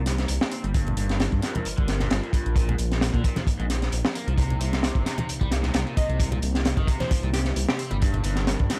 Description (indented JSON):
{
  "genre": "breakbeat, breaks",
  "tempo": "132 BPM",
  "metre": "4/4",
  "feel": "swing 54% on 16ths",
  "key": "C minor",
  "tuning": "A4 = 440 Hz",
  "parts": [
    { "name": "warbly tape-like pad", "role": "sustained chords", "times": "0.0-8.8 s", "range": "C3 to Bb4", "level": "-39 LUFS", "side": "equal", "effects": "none" },
    { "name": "dark detuned saw bass", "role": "bass", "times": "0.0-8.7 s", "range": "G1 to Bb2", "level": "-28 LUFS", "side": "equal", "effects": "none" },
    { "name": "crunchy breakbeat drum kit", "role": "drums", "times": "0.1-8.8 s", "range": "hi-hat, kick drum, snare drum", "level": "-28 LUFS", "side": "equal", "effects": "none" },
    { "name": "electronic hi-hat", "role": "drums", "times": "0.1-8.8 s", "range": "none", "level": "-45 LUFS", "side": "equal", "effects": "none" },
    { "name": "overdriven electric guitar", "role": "riff", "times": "0.5-8.8 s", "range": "F2 to C4", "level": "-38 LUFS", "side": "equal", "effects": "low-pass filter, tape echo" },
    { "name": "congas and bongos", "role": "percussion", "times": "0.9-8.8 s", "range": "none", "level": "-35 LUFS", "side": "equal", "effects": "none" },
    { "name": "glassy wavetable pluck", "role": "melody", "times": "6.0-8.0 s", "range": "G4 to Eb5", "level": "-36 LUFS", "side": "equal", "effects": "chorus, telephone sound, tape echo" }
  ],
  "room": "little or no reverb",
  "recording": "dry, gritty hardware recording",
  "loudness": "-25 LUFS",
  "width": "mono",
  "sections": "0.0-8.8 A section",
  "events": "none",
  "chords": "0.0 Cm7; 0.7 Gm7; 2.6 Bbsus4; 4.4 Cm7; 8.0 Gm7"
}